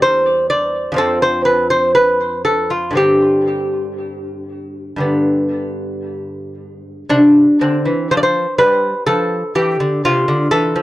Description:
classical, baroque-style dance for lute; 57-62 BPM; 4/4; rubato; C major; A4 = 440 Hz
lute; solo; 0.0-10.8 s; E2 to D5; -14 LUFS; equal; tape echo
light reverb; dry, close 1970s-style studio recording; -13 LUFS; side -16 dB against mid
0.0-7.1 A section; 7.1-10.8 B section
0.0 C/E; 1.0 F5; 3.0 Gsus4; 5.0 G; 7.1 C5; 9.1 Dm7

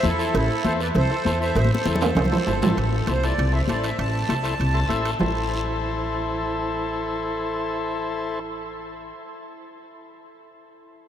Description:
latin, cumbia; 198 BPM; 4/4; straight; A minor; A4 = 441 Hz
accordion; melody; 0.0-4.9 s; E4 to A5; -27 LUFS; right 2 dB; light tremolo tuning
combo organ; accompaniment; 0.0-8.4 s; E4 to A5; -28 LUFS; left 2 dB
upright bass; bass; 0.0-9.1 s; G1 to E2; -25 LUFS; equal
congas; percussion; 0.0-5.3 s; -28 LUFS; left 1 dB
guiro; percussion; 0.0-5.3 s; -37 LUFS; right 3 dB
cowbell and timbales; percussion; 0.3-5.3 s; -30 LUFS; right 5 dB
wet huge ambient reverb, RT60 7.5 s; in a vast, echoing space; -21 LUFS; side -10 dB against mid
0.0-2.8 A section; 2.8-5.2 B section; 5.2-7.6 C section
drum fill 1.6-2.8; transistor combo organ fill 4.6-5.2
0.0 Am

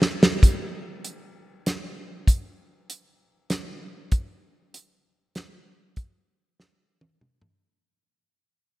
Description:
rock; 97 BPM; 3/4; straight
damped 70s drum kit; drums; 0.0-7.6 s; hi-hat, kick drum, snare drum, toms; -20 LUFS; equal
light reverb; rough home demo mix; -22 LUFS; side -19 dB against mid
0.4-7.8 A section
drum fill 0.0-0.4, 6.6-7.8; fade-out 0.4-7.8

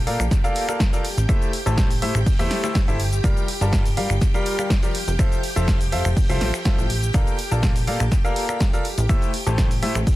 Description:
piano house; 123 BPM; 4/4; straight; A4 = 443 Hz
string machine, violins; sustained chords; 0.0-10.2 s; G4 to G5; -32 LUFS; right 1 dB; ensemble chorus, sidechain pumping
plucky analog bass; bass; 0.0-10.0 s; F1 to Bb2; -22 LUFS; equal; sidechain pumping
clear concert grand piano; riff; 0.1-10.0 s; F3 to A5; -26 LUFS; left 1 dB; sidechain pumping, tape echo
punchy analog drum machine; drums; 0.1-10.2 s; finger snaps, hi-hat, shaker, snare drum; -29 LUFS; equal
vintage drum kit; drums; 0.1-10.2 s; hi-hat, shaker, snare drum; -40 LUFS; equal
electronic kick drum; drums; 0.3-10.2 s; -20 LUFS; equal
little or no reverb; dense, heavily limited modern master; -18 LUFS; side -16 dB against mid
0.0-10.2 A section
0.0 Bbmaj7; 1.0 Am7; 3.0 Gm7; 4.9 Fmaj7; 7.1 Bbmaj7; 8.8 Am7

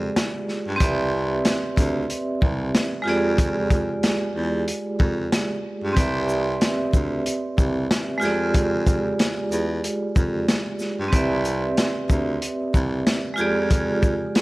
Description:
hip hop, boom-bap hip-hop; 93 BPM; 4/4; swing 60% on 16ths; C major; A4 = 440 Hz
vibraphone with medium hard mallets; accompaniment; 0.0-14.4 s; Ab3 to E5; -24 LUFS; right 2 dB; cassette tape
growling baritone saxophone; bass; 0.0-14.3 s; C2 to G2; -26 LUFS; equal
crunchy breakbeat drum kit; drums; 0.2-14.4 s; hi-hat, kick drum, shaker, snare drum; -22 LUFS; equal
light reverb, small room ambience; vinyl crackle; -20 LUFS; side -21 dB against mid
0.0-14.4 A section
0.0 Fm6; 0.8 Cmaj9; 3.1 Fm6; 6.0 Cmaj9; 8.2 Fm6; 11.1 Cmaj9; 13.4 Fm6

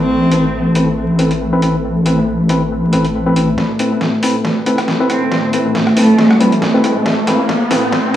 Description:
deep dubstep; 138 BPM; 4/4; swing 55% on 16ths, half-time; A minor; A4 = 440 Hz
warm cello; melody; 0.0-0.6, 5.1-6.4 s; A3 to C4; -18 LUFS; equal; low-pass filter, dub echo
granular cloud pad; sustained chords; 0.0-8.2 s; A3; -17 LUFS; equal; built-in reverb
wobble bass; bass; 0.0-3.6 s; A1; -15 LUFS; left 1 dB; chorus
flickering grainy texture; texture; 0.0-3.6 s; A4; -32 LUFS; right 6 dB
percussive organ stab; stabs; 0.3-7.8 s; C4 to B4; -18 LUFS; left 1 dB; chorus, dub echo
trip hop sampler-style drum kit; drums; 0.3-8.0 s; hi-hat, rim click, snare drum; -20 LUFS; equal; overdrive, high-pass filter on hats, high-pass filter on snare
riser; sound effects; 4.8-8.2 s; -21 LUFS; equal
moderate echo chamber reverb, RT60 1.3 s, digital ambience; vinyl crackle, studio reverb; -12 LUFS; side -11 dB against mid
0.0-3.6 A section; 3.6-8.2 B section
build-up 3.6-8.2; drum fill 3.6-8.2; riser 4.8-8.2
0.0 Amadd9

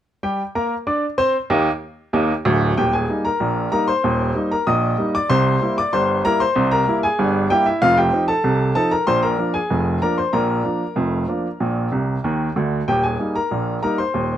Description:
ragtime piano; 95 BPM; 2/4; straight; Eb major; A4 = 440 Hz
clear baby grand piano; solo; 0.2-14.4 s; D1 to Eb6; -17 LUFS; equal
light reverb; close, detailed microphones; -17 LUFS; side -11 dB against mid
0.2-2.8 A section; 2.8-14.4 B section
grand piano fill 11.9-12.9
0.2 Eb; 5.3 C7; 7.8 F7; 9.1 Bb7; 10.3 Bb; 12.9 Eb

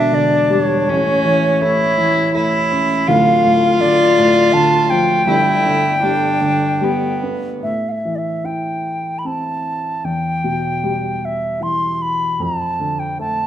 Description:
celtic folk, Celtic slow air; 72-83 BPM; 3/4; rubato; A4 = 440 Hz
bright reedy baroque flute; melody; 0.0-13.5 s; C#5 to C6; -18 LUFS; left 1 dB
rich cello; second line; 0.0-7.7 s; B3 to F4; -17 LUFS; right 1 dB
warm upright piano; accompaniment; 0.0-13.5 s; D1 to E4; -20 LUFS; equal
moderate recital hall reverb, RT60 1.4 s; minimal, uncompressed stereo recording; -14 LUFS; side -10 dB against mid
0.0-7.6 A section; 7.6-13.5 B section
0.0 Em7; 0.9 A; 3.1 Dm; 5.3 G; 7.6 Am7; 10.0 Em; 12.4 Dm/F

